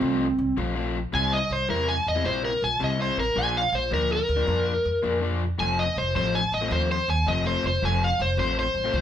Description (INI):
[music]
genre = electric blues shuffle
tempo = 108 BPM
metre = 4/4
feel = swing 67% on 8ths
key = unclear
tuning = A4 = 444 Hz
[part]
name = overdriven slide guitar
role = melody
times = 0.0-9.0 s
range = C4 to Ab5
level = -24 LUFS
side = equal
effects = none
[part]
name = overdriven semi-hollow guitar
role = riff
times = 0.0-9.0 s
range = F2 to F4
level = -30 LUFS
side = left 6 dB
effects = none
[part]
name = upright bass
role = bass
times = 0.0-9.0 s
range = F1 to F2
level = -28 LUFS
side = right 1 dB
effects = none
[sound]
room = light reverb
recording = band playing live in one room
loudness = -22 LUFS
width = side -10 dB against mid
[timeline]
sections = 0.0-9.0 A section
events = electric slide guitar solo 0.0-9.0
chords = 0.0 F; 1.1 C; 3.4 Bb; 5.6 F